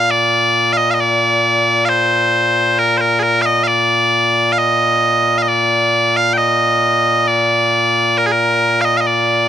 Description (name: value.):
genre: scottish traditional, Scottish pipe music.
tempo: 67 BPM.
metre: 3/4.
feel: straight.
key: Bb major.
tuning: A4 = 440 Hz.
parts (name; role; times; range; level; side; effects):
loud bright bagpipes; solo; 0.0-9.5 s; Bb2 to G5; -12 LUFS; equal; none.
room: little or no reverb.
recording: close, detailed microphones.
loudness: -12 LUFS.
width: side -10 dB against mid.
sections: 0.0-9.5 A section.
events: none.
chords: none.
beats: | 0.12 1.02 1.91 | 2.81 3.70 4.60 | 5.49 6.39 7.28 | 8.18 9.07.